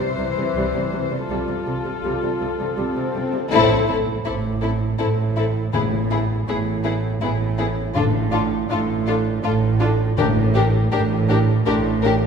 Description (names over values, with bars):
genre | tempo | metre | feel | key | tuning
cinematic, suspense film score | 81 BPM | 3/4 | straight | A minor | A4 = 439 Hz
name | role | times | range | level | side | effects
warm chamber violin section | melody | 0.0-12.1 s | G#4 to C5 | -26 LUFS | left 6 dB | none
warm studio viola section | accompaniment | 0.0-12.1 s | E3 to F4 | -27 LUFS | equal | none
warm studio cello section | bass | 0.0-12.3 s | A2 to C3 | -24 LUFS | right 4 dB | none
concert harp | texture | 0.0-0.6, 4.3-12.3 s | E5 to E6 | -42 LUFS | left 6 dB | none
warm studio double bass section | bass | 0.2-12.3 s | A1 to C2 | -24 LUFS | right 2 dB | none
swell and impact | sound effects | 2.0-5.7 s | none | -30 LUFS | left 2 dB | none
warm studio violin section | second line | 3.5-12.1 s | E4 to G4 | -25 LUFS | left 4 dB | none
timpani | percussion | 5.7-11.3 s | A2 | -26 LUFS | left 3 dB | none
room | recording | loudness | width
wet scoring stage reverb, RT60 1.6 s | heard from further back in the room | -18 LUFS | side -6 dB against mid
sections
0.0-3.5 A section; 3.5-12.3 B section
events
swell 2.0-3.5; band accent 3.5-4.3; impact 3.5-5.7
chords
0.0 C; 1.3 Fadd9/C; 3.5 Am; 5.7 N.C.; 8.0 D5/A